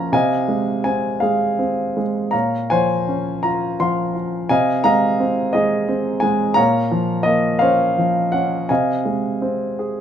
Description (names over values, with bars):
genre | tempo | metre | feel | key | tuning
classical, lyrical solo piano | 54-58 BPM (dotted quarters) | 6/8 | rubato | Bb minor | A4 = 441 Hz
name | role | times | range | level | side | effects
warm grand piano | solo | 0.0-10.0 s | Bb2 to Db6 | -16 LUFS | equal | none
room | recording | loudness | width
moderate studio reverb, RT60 0.7 s | minimal, uncompressed stereo recording | -16 LUFS | side -9 dB against mid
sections
0.0-10.0 A section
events
none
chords
0.1 Fm7/C; 2.3 Bbmadd9; 4.5 Fm7/C; 6.6 Bbmadd9; 8.7 Fm7/C